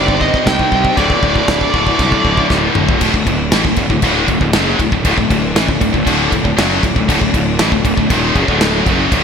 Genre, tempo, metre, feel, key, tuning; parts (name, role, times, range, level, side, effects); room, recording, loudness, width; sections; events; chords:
heavy metal; 118 BPM; 4/4; straight; A4 = 436 Hz
high-gain lead guitar; melody; 0.0-2.5 s; D5 to G5; -17 LUFS; right 2 dB; distortion
muted studio string section; sustained chords; 0.0-9.2 s; Eb3 to D5; -26 LUFS; left 2 dB
biting overdriven guitar; riff; 0.0-9.2 s; D2 to C5; -20 LUFS; equal
high-gain distorted guitar; riff; 0.0-9.2 s; D2 to C4; -20 LUFS; right 10 dB; distortion
tight distorted guitar; riff; 0.0-9.2 s; D2 to C4; -19 LUFS; left 10 dB; distortion, slapback echo
fuzz fingered electric bass; bass; 0.0-9.2 s; D1 to C2; -19 LUFS; equal; overdrive
modern studio drum kit; drums; 0.1-9.2 s; china cymbal, crash cymbal, kick drum, snare drum, toms; -17 LUFS; equal
moderate lush hall reverb, RT60 1.9 s, studio ambience; big arena sound; -11 LUFS; side -6 dB against mid
0.0-3.0 A section; 3.0-9.2 B section
drum fill 2.5-3.0
0.0 Cm; 1.0 D